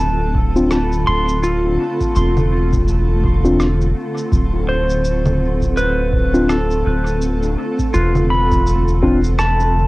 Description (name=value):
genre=ambient dub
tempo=83 BPM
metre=4/4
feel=swing 59% on 16ths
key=D dorian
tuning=A4 = 439 Hz
part: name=granular cloud pad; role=sustained chords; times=0.0-9.9 s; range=D3 to A4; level=-23 LUFS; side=right 1 dB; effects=built-in reverb, plate reverb
part: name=pedal steel guitar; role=arpeggios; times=0.0-9.9 s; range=F4 to C6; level=-21 LUFS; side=equal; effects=dub echo
part: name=soft dub sub bass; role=bass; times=0.0-9.9 s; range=D1 to F1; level=-18 LUFS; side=equal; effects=none
part: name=electronic kick drum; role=drums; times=0.3-9.2 s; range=none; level=-21 LUFS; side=equal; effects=cassette tape
part: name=mellow tine electric piano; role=stabs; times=0.6-9.2 s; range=C4 to F4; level=-20 LUFS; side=left 1 dB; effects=dub echo, plate reverb
part: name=electronic cabasa, rim click and congas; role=drums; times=0.6-9.7 s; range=none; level=-25 LUFS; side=equal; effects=cassette tape, dub echo
room=light reverb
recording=home recording on cassette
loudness=-14 LUFS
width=side -20 dB against mid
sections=0.0-9.9 A section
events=none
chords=0.0 Dm7